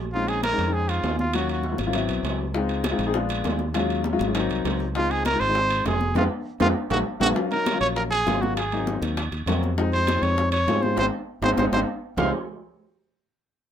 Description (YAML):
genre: Afro-Cuban jazz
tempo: 199 BPM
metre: 4/4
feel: straight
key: Db major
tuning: A4 = 440 Hz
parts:
  - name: modern bright fingered electric bass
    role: bass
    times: 0.0-12.3 s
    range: F1 to Ab2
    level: -28 LUFS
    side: equal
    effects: none
  - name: warm trumpet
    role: melody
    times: 0.1-1.8, 5.0-12.3 s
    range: F4 to F5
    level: -24 LUFS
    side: right 1 dB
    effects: none
  - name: warm grand piano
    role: accompaniment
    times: 0.1-12.3 s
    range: F3 to Ab4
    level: -26 LUFS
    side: left 4 dB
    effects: none
  - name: congas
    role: percussion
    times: 0.1-12.2 s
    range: none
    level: -31 LUFS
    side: left 1 dB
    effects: none
  - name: timbales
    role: percussion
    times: 0.3-12.2 s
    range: none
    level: -31 LUFS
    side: right 5 dB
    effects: none
  - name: bongos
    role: percussion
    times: 2.5-12.2 s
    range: none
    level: -33 LUFS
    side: left 3 dB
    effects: none
room: moderate club reverb, RT60 0.6 s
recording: minimal, uncompressed stereo recording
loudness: -21 LUFS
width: side -9 dB against mid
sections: 0.0-7.4 A section; 7.4-12.2 B section; 12.2-13.4 C section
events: band accent 6.2-7.4, 11.0-12.2; drum fill 6.8-7.4, 11.3-12.2; grand piano fill 11.6-12.2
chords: 0.1 Bbm11; 1.3 Ebm7; 1.9 Ab7alt; 2.5 Dbmaj9; 3.1 Bb7b9; 3.8 Ebm11; 4.4 Ab9; 5.0 Dbmaj9; 6.2 Fdim; 6.8 Gbadd9/Bb; 7.4 Ebm7; 8.6 Ab7; 9.8 Fm7; 11.0 Ab; 12.2 Dbmaj9